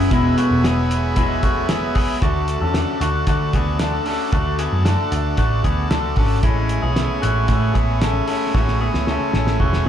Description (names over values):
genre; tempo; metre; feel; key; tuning
jangly indie pop; 114 BPM; 4/4; straight; unclear; A4 = 442 Hz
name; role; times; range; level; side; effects
soft octave-layered synth lead; melody; 0.0-1.2 s; B3 to C#4; -21 LUFS; left 1 dB; chorus, plate reverb, slapback echo, digital delay
combo organ; accompaniment; 0.0-9.9 s; A3 to A4; -28 LUFS; right 3 dB; slapback echo
electric guitar through a small old amp; accompaniment; 0.0-9.9 s; E2 to F#4; -27 LUFS; right 4 dB; slapback echo
electric guitar through a small old amp; arpeggios; 0.0-9.9 s; G#3 to A4; -23 LUFS; left 4 dB; plate reverb, slapback echo, digital delay
vintage muted picked electric bass; bass; 0.0-9.9 s; E1 to D3; -21 LUFS; equal; none
cloth-damped thuddy drum kit; drums; 0.1-9.9 s; hi-hat, kick drum, snare drum; -22 LUFS; equal; none
room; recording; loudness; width
little or no reverb; live gig heard through the venue's PA, club ambience; -16 LUFS; side -10 dB against mid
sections
0.0-2.2 A section; 2.2-9.9 B section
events
drum fill 8.5-9.9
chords
0.0 Eadd9; 2.2 D; 6.4 Amaj7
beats
| 0.12 0.64 1.17 1.69 | 2.22 2.75 3.27 3.80 | 4.33 4.85 5.38 5.91 | 6.43 6.96 7.49 8.02 | 8.54 9.07 9.60